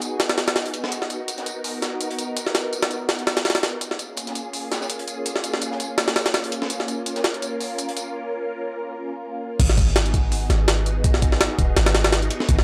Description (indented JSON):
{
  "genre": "drum and bass, jungle",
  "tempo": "166 BPM",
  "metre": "4/4",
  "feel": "swing 55% on 16ths",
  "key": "G# dorian",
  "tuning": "A4 = 441 Hz",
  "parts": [
    { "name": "soft string machine", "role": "sustained chords", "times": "0.0-12.6 s", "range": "A#3 to A#4", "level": "-31 LUFS", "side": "equal", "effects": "phaser, ensemble chorus, vintage 12-bit sampler grit" },
    { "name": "crunchy breakbeat drum kit", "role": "drums", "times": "0.0-8.1 s", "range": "hi-hat, snare drum, tambourine", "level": "-37 LUFS", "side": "equal", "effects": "high-pass filter on hats, high-pass filter on snare, high-pass filter on perc, high-pass filter on room" },
    { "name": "jungle sampler-style drum kit", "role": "drums", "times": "0.0-12.6 s", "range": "crash cymbal, hi-hat, kick drum, snare drum", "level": "-24 LUFS", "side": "equal", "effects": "high-pass filter on kick, high-pass filter on hats, high-pass filter on snare, high-pass filter on cymbals, high-pass filter on room" },
    { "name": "warm 808-style bass", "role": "bass", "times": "9.6-12.6 s", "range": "D#1 to G#1", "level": "-24 LUFS", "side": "equal", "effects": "none" }
  ],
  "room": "light reverb, small room ambience",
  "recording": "dry, gritty hardware recording, transformer saturation",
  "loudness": "-23 LUFS",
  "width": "mono",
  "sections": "0.0-9.6 A section; 9.6-12.6 B section",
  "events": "break 8.2-9.6; drop 9.6-12.6",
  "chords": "0.0 G#m7; 3.8 A#m7; 9.6 G#m7",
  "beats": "0.20 0.56 | 0.92 1.28 1.64 2.01 | 2.37 2.73 3.09 3.45 | 3.81 4.17 4.54 4.90 | 5.26 5.62 5.98 6.34 | 6.71 7.07 7.43 7.79 | 8.15 8.51 8.87 9.23 | 9.60 9.96 10.32 10.68 | 11.04 11.40 11.77 12.13 | 12.49"
}